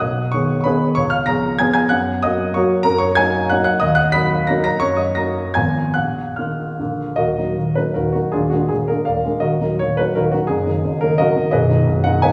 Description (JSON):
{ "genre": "classical, romantic triple-time dance for piano with dotted rhythms", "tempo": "137-206 BPM", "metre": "3/4", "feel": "rubato", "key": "Eb minor", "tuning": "A4 = 440 Hz", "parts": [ { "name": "warm baby grand piano", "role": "solo", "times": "0.0-12.3 s", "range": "Cb1 to Cb7", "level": "-18 LUFS", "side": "equal", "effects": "none" } ], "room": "wet recital hall reverb, RT60 1.7 s", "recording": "heard from further back in the room, small room ambience", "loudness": "-18 LUFS", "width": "mono", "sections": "0.0-7.2 A section; 7.2-12.3 B section", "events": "none", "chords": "0.0 G#m/B; 1.0 C#7; 1.9 F#; 2.9 Ebm/Gb; 3.8 Ebm; 4.8 Ebm/Gb; 5.6 Fdim/Ab; 6.0 Bbsus4; 6.8 Bb; 7.2 Ebm; 8.3 Bb7/Eb; 9.4 Ebm; 10.5 Ebm/Gb; 11.5 Abm/Cb" }